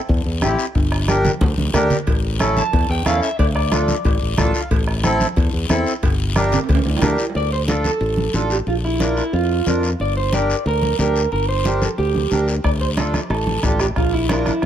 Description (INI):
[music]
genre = latin, cumbia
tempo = 182 BPM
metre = 4/4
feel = straight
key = D minor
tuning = A4 = 439 Hz
[part]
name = fingered electric bass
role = bass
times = 0.1-14.7 s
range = G1 to F2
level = -21 LUFS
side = equal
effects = none
[part]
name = bombo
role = percussion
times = 0.1-7.2, 12.6-14.7 s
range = none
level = -22 LUFS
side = left 1 dB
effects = none
[part]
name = guiro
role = percussion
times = 0.1-14.7 s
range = none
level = -31 LUFS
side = left 6 dB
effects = none
[part]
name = accordion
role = accompaniment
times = 0.4-14.5 s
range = C4 to A5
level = -23 LUFS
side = equal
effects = none
[part]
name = congas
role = percussion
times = 0.4-14.7 s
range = none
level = -24 LUFS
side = right 2 dB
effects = none
[part]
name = cowbell and timbales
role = percussion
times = 2.1-7.4 s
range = none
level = -28 LUFS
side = right 6 dB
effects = none
[part]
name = electric guitar at the edge of break-up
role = second line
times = 2.6-4.5, 7.4-14.7 s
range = E4 to A5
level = -22 LUFS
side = right 2 dB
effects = none
[sound]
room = light reverb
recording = none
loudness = -16 LUFS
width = side -10 dB against mid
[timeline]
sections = 0.0-7.4 A section; 7.4-14.7 B section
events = clean electric guitar solo 0.0-7.4, 7.4-14.7; drum fill 1.4-2.1, 6.5-7.4; accordion fill 4.2-4.7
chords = 0.0 Am; 0.7 Gm; 2.1 A; 3.4 Dm; 4.7 Am; 6.0 Gm; 7.4 Dm; 8.7 Bb; 10.0 Gm; 12.6 Dm; 14.0 Bb